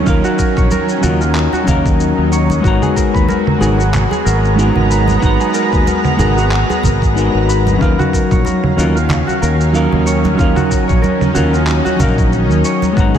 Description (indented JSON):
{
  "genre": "sunset chillout",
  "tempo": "93 BPM",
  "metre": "4/4",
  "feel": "swing 56% on 16ths",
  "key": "unclear",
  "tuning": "A4 = 439 Hz",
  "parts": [
    { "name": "semi-hollow electric guitar", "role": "accompaniment", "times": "0.0-13.2 s", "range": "F#3 to A#5", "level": "-18 LUFS", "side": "moving between left 8 dB and right 6 dB", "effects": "auto-pan, ping-pong delay" },
    { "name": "shimmering ambient pad", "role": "sustained chords", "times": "0.0-13.2 s", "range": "D#3 to A#5", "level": "-19 LUFS", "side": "equal", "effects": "chorus, built-in reverb" },
    { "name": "Celtic harp", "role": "arpeggios", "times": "0.0-13.2 s", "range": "E#4 to C#5", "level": "-20 LUFS", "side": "right 1 dB", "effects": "ping-pong delay" },
    { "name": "fingered electric bass", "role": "bass", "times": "0.1-13.1 s", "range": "G#1 to D#2", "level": "-16 LUFS", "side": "equal", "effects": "none" },
    { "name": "electronic kick drum", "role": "drums", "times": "0.1-13.1 s", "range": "none", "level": "-16 LUFS", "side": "equal", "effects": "studio reverb" },
    { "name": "electronic shaker, handclaps and congas", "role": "drums", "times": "0.1-13.2 s", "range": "none", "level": "-22 LUFS", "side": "right 2 dB", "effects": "studio reverb" },
    { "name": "congas", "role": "percussion", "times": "0.7-12.9 s", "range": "none", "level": "-22 LUFS", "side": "right 2 dB", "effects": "none" }
  ],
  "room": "light reverb",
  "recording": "none",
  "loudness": "-11 LUFS",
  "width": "side -9 dB against mid",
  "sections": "0.0-13.2 A section",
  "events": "none",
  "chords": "0.0 D#m9; 2.6 G#m9; 7.8 D#m9",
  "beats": "| 0.07 0.71 1.35 2.00 | 2.65 3.29 3.94 4.58 | 5.23 5.87 6.52 7.16 | 7.81 8.45 9.10 9.74 | 10.39 11.03 11.68 12.32 | 12.97"
}